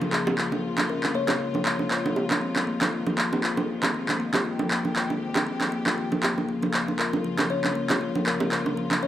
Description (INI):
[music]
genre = afro house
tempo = 118 BPM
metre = 4/4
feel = swing 56% on 16ths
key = Bb dorian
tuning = A4 = 440 Hz
[part]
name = kalimba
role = melody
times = 0.0-2.1, 7.0-9.1 s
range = Ab4 to Db5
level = -32 LUFS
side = left 5 dB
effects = tape echo
[part]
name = warm studio string section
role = sustained chords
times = 0.0-9.1 s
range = C3 to G4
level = -34 LUFS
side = left 2 dB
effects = none
[part]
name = kalimba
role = arpeggios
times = 0.0-9.1 s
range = F3 to F4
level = -29 LUFS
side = left 2 dB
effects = low-pass filter, tape echo
[part]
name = bongos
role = percussion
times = 0.0-9.0 s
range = none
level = -28 LUFS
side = right 3 dB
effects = none
[part]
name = downlifter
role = sound effects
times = 0.0-2.4 s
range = none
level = -46 LUFS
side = equal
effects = none
[part]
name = electronic handclaps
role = drums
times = 0.1-9.0 s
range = none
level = -27 LUFS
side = equal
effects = overdrive
[sound]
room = light reverb, small room ambience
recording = dry, gritty hardware recording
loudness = -23 LUFS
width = side -12 dB against mid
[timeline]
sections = 0.0-9.1 A section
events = none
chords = 0.0 Bbm7; 2.4 Ab6; 6.5 Bbm7